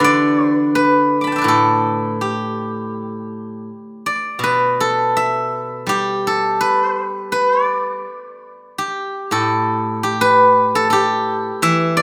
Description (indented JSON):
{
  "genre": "chinese traditional, Chinese solo plucked strings",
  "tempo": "82 BPM",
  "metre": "2/4",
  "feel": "rubato",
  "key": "D zhi mode",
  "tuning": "A4 = 442 Hz",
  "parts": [
    { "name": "steel-string zither", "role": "solo", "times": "0.0-12.0 s", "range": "A2 to D6", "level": "-18 LUFS", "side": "equal", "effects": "slapback echo" }
  ],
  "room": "moderate plate reverb, RT60 2.9 s",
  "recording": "rough home demo mix",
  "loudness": "-17 LUFS",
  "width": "mono",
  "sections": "0.0-8.8 A section; 8.8-12.0 B section",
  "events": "none",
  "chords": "none",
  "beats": "| 0.03 0.73 | 1.46 2.19 | 2.93 3.68 | 4.42 5.16 | 5.89 6.59 | 7.30 8.04 | 8.79 9.52 | 10.24 10.95 | 11.67"
}